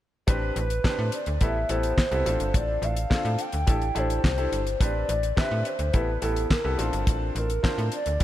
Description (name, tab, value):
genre	early-eighties boogie funk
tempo	106 BPM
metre	4/4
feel	straight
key	A minor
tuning	A4 = 442 Hz
part	clear concert grand piano	accompaniment	0.3-8.2 s	B3 to C5	-31 LUFS	left 1 dB	none
part	slap-like FM bass	bass	0.3-8.2 s	G1 to A2	-28 LUFS	equal	none
part	damped 70s drum kit	drums	0.3-8.2 s	handclaps, hi-hat, kick drum, snare drum	-26 LUFS	equal	none
part	hollow clarinet-like synth lead	melody	0.6-8.2 s	A4 to G5	-29 LUFS	equal	chorus, ping-pong delay
room	light reverb, studio ambience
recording	none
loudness	-23 LUFS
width	side -13 dB against mid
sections	0.3-8.2 A section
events	none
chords	0.3 Am11; 1.4 Am9; 2.3 G9sus4 (rootless); 3.7 C6/A; 4.8 Am11; 5.9 Am9; 6.8 Bbmaj7